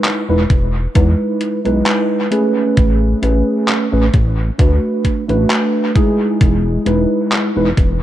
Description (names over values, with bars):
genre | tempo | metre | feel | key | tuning
vaporwave | 66 BPM | 4/4 | swing 54% on 16ths | E major | A4 = 439 Hz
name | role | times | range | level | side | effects
mellow tine electric piano | accompaniment | 0.0-7.7 s | G#3 to B4 | -16 LUFS | right 1 dB | analog chorus, dub echo
detuned 8-bit digital drum machine | drums | 0.0-8.0 s | handclaps, hi-hat | -22 LUFS | equal | overdrive, dub echo
chorused synth bass | bass | 0.3-8.0 s | E1 to E2 | -16 LUFS | equal | none
electronic kick drum | drums | 0.5-8.0 s | none | -14 LUFS | equal | overdrive
room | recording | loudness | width
moderate plate reverb, RT60 2.0 s | echo-heavy mix, cassette tape | -13 LUFS | side -13 dB against mid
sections
0.0-8.0 A section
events
none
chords
0.0 Emaj7; 2.8 Amaj9; 4.6 D6; 6.4 Emaj7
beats
0.05 0.95 1.86 | 2.77 3.68 4.59 5.50 | 6.41 7.32